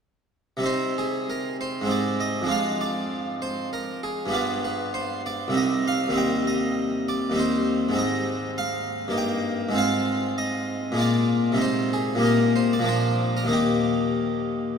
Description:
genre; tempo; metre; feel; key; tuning
classical, baroque-style suite movement for harpsichord; 98 BPM; 3/4; rubato; C minor, Eb major from 8.0 s; A4 = 440 Hz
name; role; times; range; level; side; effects
harpsichord; solo; 0.6-14.8 s; C2 to G5; -22 LUFS; equal; none
room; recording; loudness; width
wet cathedral reverb, RT60 5.4 s; in a vast, echoing space; -22 LUFS; side -6 dB against mid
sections
0.7-14.8 A section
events
none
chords
0.7 Cm; 1.9 Ab; 2.5 Ddim/F; 4.3 G7; 5.6 Cm; 6.2 Cm/Eb; 8.0 Ab; 9.2 Eb/G; 9.8 Fm/Ab; 11.0 Bb7; 11.6 Cm; 12.2 Eb/Bb; 12.9 Bb; 13.5 Eb

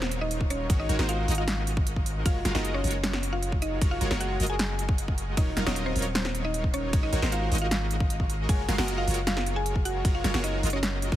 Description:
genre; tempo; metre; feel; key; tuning
future bass; 154 BPM; 4/4; half-time; Gb lydian; A4 = 442 Hz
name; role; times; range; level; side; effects
mallet-like synth pluck; melody; 0.0-11.2 s; C4 to Ab5; -33 LUFS; right 1 dB; chorus, sidechain pumping, ping-pong delay
supersaw stab; riff; 0.0-11.2 s; Gb3 to F5; -33 LUFS; equal; sidechain pumping
long sustained 808-style bass; bass; 0.0-11.2 s; Eb1 to Ab1; -30 LUFS; equal; sidechain pumping
big-room dance drum kit; drums; 0.0-11.1 s; hi-hat, ride cymbal, snare drum; -32 LUFS; equal; overdrive
electronic kick drum; drums; 0.4-11.2 s; none; -25 LUFS; equal; none
room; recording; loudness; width
little or no reverb; heavily compressed radio sound; -24 LUFS; side -13 dB against mid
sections
0.0-11.2 A section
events
none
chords
0.0 Ebm9; 0.7 Ab9sus4; 2.3 Gbmaj9; 5.4 Ebm9; 6.9 Ab9sus4; 8.5 Gbmaj9

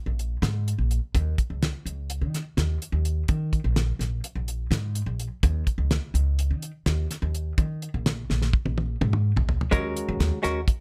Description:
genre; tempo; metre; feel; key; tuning
progressive instrumental, band music in an uneven meter; 252 BPM (eighths); 9/8; straight; Eb minor; A4 = 440 Hz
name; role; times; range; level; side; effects
upright bass; bass; 0.1-10.6 s; Bb1 to Eb3; -28 LUFS; equal; none
damped 70s drum kit; drums; 0.2-10.8 s; hi-hat, kick drum, snare drum, toms; -28 LUFS; equal; none
hollow-body jazz guitar; accompaniment; 9.7-10.6 s; Ab3 to Bb4; -29 LUFS; equal; none
room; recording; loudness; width
little or no reverb; none; -26 LUFS; mono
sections
0.0-9.7 A section; 9.7-10.8 B section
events
drum fill 8.3-9.7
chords
0.0 Eb5; 9.7 Ebm

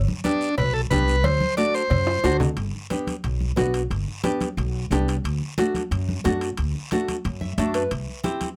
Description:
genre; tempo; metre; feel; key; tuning
latin, cumbia; 180 BPM; 4/4; straight; G major; A4 = 440 Hz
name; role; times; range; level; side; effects
upright bass; bass; 0.0-8.1 s; G1 to F#2; -27 LUFS; equal; none
congas; percussion; 0.1-8.6 s; none; -32 LUFS; equal; none
overdriven combo organ; melody; 0.2-2.4 s; D4 to D5; -25 LUFS; equal; none
nylon-string guitar; accompaniment; 0.2-8.5 s; A3 to E5; -27 LUFS; equal; none
guiro; percussion; 0.2-8.6 s; none; -42 LUFS; equal; none
cowbell and timbales; percussion; 0.3-8.6 s; none; -35 LUFS; equal; none
room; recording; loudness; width
light reverb; close, detailed microphones; -24 LUFS; mono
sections
0.0-2.6 A section; 2.6-8.6 B section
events
drum fill 1.2-2.6; nylon-string guitar fill 7.2-7.9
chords
0.0 G; 1.2 D7; 2.6 G; 5.2 D; 7.9 C

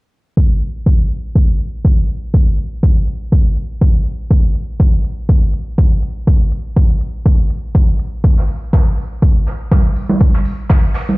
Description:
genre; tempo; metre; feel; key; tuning
house; 122 BPM; 4/4; swing 56% on 16ths; none; none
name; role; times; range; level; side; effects
electronic kick drum; drums; 0.4-10.8 s; none; -12 LUFS; equal; studio reverb
electronic hi-hat; drums; 0.6-11.1 s; none; -48 LUFS; left 1 dB; studio reverb
jazz brush drum kit; drums; 8.2-11.2 s; hi-hat, snare drum, tambourine; -29 LUFS; right 1 dB; high-pass filter on hats, studio reverb, high-pass filter on snare, high-pass filter on perc, high-pass filter on room
congas; percussion; 9.7-11.2 s; none; -17 LUFS; right 2 dB; none
room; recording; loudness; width
small room ambience; played on a big sound system in a bare room, stone room reverb, low-pass filter; -12 LUFS; side -22 dB against mid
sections
0.4-11.2 A section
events
filter sweep 0.4-11.2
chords
none

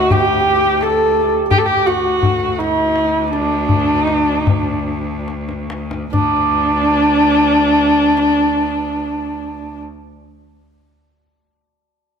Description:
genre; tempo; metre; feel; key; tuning
Persian modal ensemble; 68-85 BPM; 3/4; straight; D dastgah homayun; A4 = 440 Hz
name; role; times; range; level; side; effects
warm kamancheh; melody; 0.0-9.8 s; D4 to A4; -15 LUFS; equal; none
santur; second line; 0.0-9.9 s; D4 to A4; -21 LUFS; right 6 dB; none
bright cello; drone; 0.0-9.8 s; D2; -24 LUFS; left 2 dB; none
tombak; percussion; 0.1-6.5 s; none; -20 LUFS; left 3 dB; none
room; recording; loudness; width
moderate concert hall reverb, RT60 1.8 s; close, detailed microphones; -13 LUFS; side -7 dB against mid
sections
0.0-6.1 A section; 6.1-11.4 B section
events
slowing down 1.5-6.1; drum fill 5.3-6.1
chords
none

